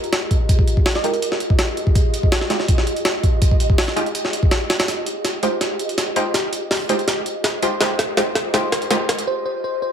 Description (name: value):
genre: drum and bass, jungle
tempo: 164 BPM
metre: 4/4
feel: straight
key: F minor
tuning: A4 = 440 Hz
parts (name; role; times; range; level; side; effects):
- bell-like FM electric piano; melody; 0.0-1.4, 5.4-9.9 s; Bb4 to Eb5; -25 LUFS; right 2 dB; chorus, phaser, vintage 12-bit sampler grit, dub echo
- ethereal airy pad; sustained chords; 0.0-9.2 s; F4 to Eb5; -27 LUFS; equal; ensemble chorus, built-in reverb
- jungle sampler-style drum kit; drums; 0.0-9.3 s; hi-hat, kick drum, snare drum; -18 LUFS; equal; none
- orchestra-hit-like synth stab; stabs; 1.0-9.0 s; Ab3 to G4; -25 LUFS; equal; built-in reverb, dub echo
room: light reverb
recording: none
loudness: -17 LUFS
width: side -8 dB against mid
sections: 0.0-9.9 A section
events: build-up 0.0-9.9; filter sweep on ambient pad 0.0-9.9; filter sweep on synth stab 0.0-9.9; drum fill 4.9-9.3; break 9.3-9.9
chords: 0.0 Fm9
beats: 0.13 | 0.49 0.86 1.22 1.59 | 1.96 2.32 2.69 3.05 | 3.42 3.79 4.15 4.52 | 4.88 5.25 5.62 5.98 | 6.35 6.71 7.08 7.44 | 7.81 8.18 8.54 8.91 | 9.27 9.64